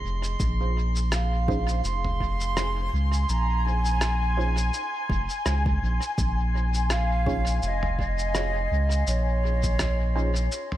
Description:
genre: ambient dub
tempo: 83 BPM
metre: 4/4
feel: swing 56% on 16ths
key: Bb minor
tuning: A4 = 440 Hz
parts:
  - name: warm analog pad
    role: sustained chords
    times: 0.0-10.8 s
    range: Ab4 to Ab5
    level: -35 LUFS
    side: left 3 dB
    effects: chorus
  - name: soft dub sub bass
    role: bass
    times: 0.0-10.5 s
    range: F1 to Db2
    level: -25 LUFS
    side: equal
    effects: tube saturation
  - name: drifting glass-harmonics texture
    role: texture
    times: 0.0-10.8 s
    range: C6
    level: -37 LUFS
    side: right 5 dB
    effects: chorus, built-in reverb
  - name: lo-fi sampler-style drum kit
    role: drums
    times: 0.2-10.8 s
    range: rim click, shaker, toms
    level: -34 LUFS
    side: equal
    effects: small room ambience, dub echo
  - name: electronic kick drum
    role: drums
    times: 0.4-9.8 s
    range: none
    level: -29 LUFS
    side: equal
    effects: small room ambience
  - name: breathy mellow wooden flute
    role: melody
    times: 1.1-10.8 s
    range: Db5 to C6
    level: -31 LUFS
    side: right 2 dB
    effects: dub echo
  - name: filtered dub chord stab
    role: stabs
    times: 1.5-10.3 s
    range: Db4 to Db5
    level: -36 LUFS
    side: right 2 dB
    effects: chorus, dub echo
room: digital ambience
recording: none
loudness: -23 LUFS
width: side -13 dB against mid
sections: 0.0-10.8 A section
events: fade-in on analog synth pad 0.0-10.8; filter sweep on synth stab 0.0-10.8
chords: 0.0 Bbm11

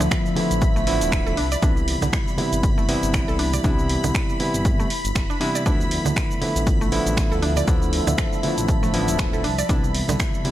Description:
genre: deep house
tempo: 119 BPM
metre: 4/4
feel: swing 57% on 16ths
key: D dorian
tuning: A4 = 440 Hz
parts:
  - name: deep dark ambient pad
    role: sustained chords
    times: 0.0-10.5 s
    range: F3 to B5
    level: -29 LUFS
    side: equal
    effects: chorus, built-in reverb, sidechain pumping
  - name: mallet-like synth pluck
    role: arpeggios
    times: 0.0-10.1 s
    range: D3 to D5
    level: -29 LUFS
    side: right 4 dB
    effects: chorus, sidechain pumping, dub echo
  - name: bell-like tine electric piano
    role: stabs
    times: 0.0-10.5 s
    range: C3 to E4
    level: -25 LUFS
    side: equal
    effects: sidechain pumping, dub echo
  - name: smooth gliding synth bass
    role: bass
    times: 0.0-10.2 s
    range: D1 to D2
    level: -26 LUFS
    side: equal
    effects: sidechain pumping
  - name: punchy analog drum machine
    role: drums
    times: 0.0-10.5 s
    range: finger snaps, hi-hat, shaker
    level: -29 LUFS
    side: right 1 dB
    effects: none
  - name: congas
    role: percussion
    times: 0.0-10.5 s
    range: none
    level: -30 LUFS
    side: right 2 dB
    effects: none
  - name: string machine, violins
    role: texture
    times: 0.0-10.5 s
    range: B5 to B6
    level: -34 LUFS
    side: equal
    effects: ensemble chorus
  - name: electronic kick drum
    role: drums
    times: 0.1-10.3 s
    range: none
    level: -22 LUFS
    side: equal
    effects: none
room: light reverb, digital ambience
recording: none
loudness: -19 LUFS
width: side -13 dB against mid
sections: 0.0-10.5 A section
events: none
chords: 0.0 Dm69; 1.4 Cmaj7; 5.7 Dm69; 9.4 Cmaj7

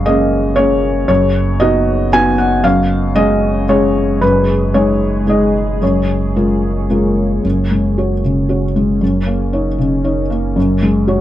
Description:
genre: neoclassical piano and strings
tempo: 115 BPM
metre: 3/4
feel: rubato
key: F# major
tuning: A4 = 440 Hz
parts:
  - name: felt-muted upright piano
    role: accompaniment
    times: 0.0-11.2 s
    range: F#2 to G#5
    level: -13 LUFS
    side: left 1 dB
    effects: none
  - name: deep dark ambient pad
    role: sustained chords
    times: 0.0-11.2 s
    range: G#3 to F#5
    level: -24 LUFS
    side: equal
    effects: chorus, built-in reverb
  - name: warm sub bass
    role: bass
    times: 0.0-11.2 s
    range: F#1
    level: -20 LUFS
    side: right 1 dB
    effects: none
room: little or no reverb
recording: worn, warbling old tape, cassette tape, warbly pitch drift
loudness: -12 LUFS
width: side -13 dB against mid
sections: 0.0-7.4 A section; 7.4-11.2 B section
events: none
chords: 0.0 A#m7/F#; 1.1 Badd9/F#; 2.6 C#/F#; 4.2 G#m/F#; 5.8 A#m7/F#; 7.4 F#sus2; 9.0 D#m7/F#; 10.6 F#sus2

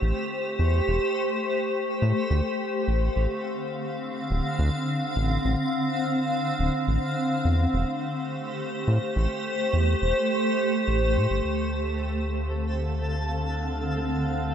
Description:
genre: IDM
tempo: 105 BPM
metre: 4/4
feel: straight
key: D minor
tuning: A4 = 441 Hz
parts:
  - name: granular cloud pad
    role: sustained chords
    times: 0.0-14.5 s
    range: D3 to F5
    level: -26 LUFS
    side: equal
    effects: built-in reverb
  - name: round analog bass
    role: bass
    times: 0.0-14.5 s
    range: D1 to A2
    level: -25 LUFS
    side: equal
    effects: none
  - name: twinkling granular texture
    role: texture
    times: 11.7-14.5 s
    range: A3 to A4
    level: -35 LUFS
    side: left 1 dB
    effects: built-in reverb
room: moderate lush hall reverb, RT60 2.7 s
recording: none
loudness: -24 LUFS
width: side -9 dB against mid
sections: 0.0-11.4 A section; 11.4-14.5 B section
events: none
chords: 0.0 Am7; 2.3 Dm7; 6.9 Am7; 11.4 Dm7

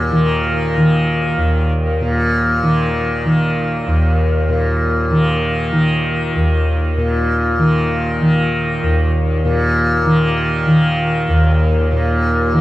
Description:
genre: world meditative, free-time meditation music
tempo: free time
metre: none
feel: none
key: unclear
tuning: A4 = 441 Hz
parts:
  - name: tanpura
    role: drone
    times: 0.0-12.6 s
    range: Eb2 to Eb3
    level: -13 LUFS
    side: equal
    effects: none
  - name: steel-string zither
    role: texture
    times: 0.0-4.8 s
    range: none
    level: barely audible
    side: none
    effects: none
room: wet huge ambient reverb, RT60 7.0 s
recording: worn, warbling old tape, cassette tape, warbly pitch drift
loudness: -14 LUFS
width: side -16 dB against mid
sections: 0.0-12.6 A section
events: none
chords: none

